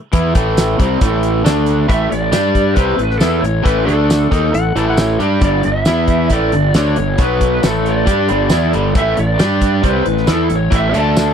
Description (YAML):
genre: classic rock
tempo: 136 BPM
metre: 4/4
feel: straight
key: unclear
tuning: A4 = 440 Hz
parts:
  - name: overdriven electric guitar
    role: riff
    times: 0.1-11.3 s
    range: G2 to G4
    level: -16 LUFS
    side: right 1 dB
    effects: none
  - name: fuzz fingered electric bass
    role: bass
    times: 0.1-11.3 s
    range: G1 to G2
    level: -18 LUFS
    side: equal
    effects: overdrive
  - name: damped 70s drum kit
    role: drums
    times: 0.1-11.3 s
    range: hi-hat, kick drum, snare drum, tambourine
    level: -15 LUFS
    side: equal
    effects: none
  - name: lead guitar through a small cranked amp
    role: melody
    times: 1.9-11.3 s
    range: A4 to A5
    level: -19 LUFS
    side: left 1 dB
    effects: overdrive
  - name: clean lap steel guitar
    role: second line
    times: 4.5-5.4 s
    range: C#5 to A5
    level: -22 LUFS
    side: left 5 dB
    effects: none
room: little or no reverb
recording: dry, close 1970s-style studio recording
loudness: -12 LUFS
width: side -8 dB against mid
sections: 0.0-1.9 A section; 1.9-11.3 B section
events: none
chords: 0.0 A5; 1.5 D5; 1.9 A5; 2.3 G5; 2.8 A5; 3.9 D5; 4.3 A5; 5.4 G5; 5.9 E5; 6.3 G5; 7.2 B5; 7.6 A5; 8.1 G5; 9.0 A5; 9.4 G5; 9.8 A5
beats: | 0.13 0.57 1.01 1.45 | 1.90 2.34 2.78 3.22 | 3.66 4.10 4.54 4.99 | 5.43 5.87 6.31 6.75 | 7.20 7.64 8.08 8.52 | 8.96 9.40 9.85 10.29 | 10.73 11.17